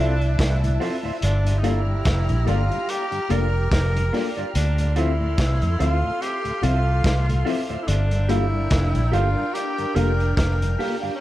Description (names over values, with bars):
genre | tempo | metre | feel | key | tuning
lovers rock reggae | 72 BPM | 4/4 | swing 57% on 16ths | G dorian | A4 = 440 Hz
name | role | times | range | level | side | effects
breathy tenor saxophone | melody | 0.0-11.2 s | C#4 to Bb4 | -28 LUFS | equal | tape echo
soft string machine | second line | 0.0-11.2 s | D4 to F6 | -32 LUFS | equal | ensemble chorus, dub echo
mellow tine electric piano | accompaniment | 0.0-11.1 s | Bb3 to A4 | -31 LUFS | left 4 dB | slow stereo tremolo, dub echo
mellow tonewheel organ | accompaniment | 0.0-11.1 s | D2 to F4 | -34 LUFS | left 3 dB | slow rotary speaker, dub echo
electric guitar through a small old amp | stabs | 0.0-11.1 s | F4 to F5 | -32 LUFS | right 4 dB | dub echo
vintage muted fingered electric bass | bass | 0.0-10.8 s | F1 to F2 | -21 LUFS | equal | none
crunchy breakbeat drum kit | drums | 0.2-11.0 s | hi-hat, kick drum, snare drum | -27 LUFS | equal | dub echo
room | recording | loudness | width
light reverb, small room ambience | dark, warm production | -19 LUFS | side -15 dB against mid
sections
0.0-11.2 A section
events
none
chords
0.0 Dm9; 1.2 Gm7; 4.5 Dm9; 7.9 Gm7